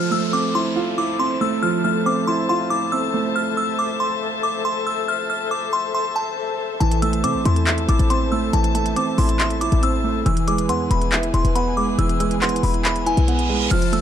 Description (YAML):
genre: hip hop, trap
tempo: 139 BPM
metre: 4/4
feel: half-time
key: unclear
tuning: A4 = 440 Hz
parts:
  - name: delicate synth tine bell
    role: melody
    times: 0.0-14.0 s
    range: G#5 to F6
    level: -24 LUFS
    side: left 2 dB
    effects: chorus, tape echo
  - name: dark concert grand piano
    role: accompaniment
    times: 0.0-14.0 s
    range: E3 to E5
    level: -22 LUFS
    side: right 4 dB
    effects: none
  - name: warm chamber string section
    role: sustained chords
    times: 0.0-14.0 s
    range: F3 to A5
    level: -28 LUFS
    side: left 4 dB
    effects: none
  - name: downlifter and reverse cymbal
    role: sound effects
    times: 0.0-3.4, 13.1-13.7 s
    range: none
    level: -31 LUFS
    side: right 1 dB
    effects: none
  - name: short 808-style bass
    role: bass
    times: 6.8-14.0 s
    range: E1 to C3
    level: -20 LUFS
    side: left 1 dB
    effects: none
  - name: trap drum kit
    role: drums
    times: 6.8-14.0 s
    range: crash cymbal, handclaps, hi-hat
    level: -25 LUFS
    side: left 1 dB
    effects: none
room: little or no reverb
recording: dark, warm production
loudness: -18 LUFS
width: side -9 dB against mid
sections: 0.0-13.7 A section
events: break 3.4-6.8; reverse cymbal 13.1-13.7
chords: 0.0 Fmaj7; 6.8 Am; 10.3 E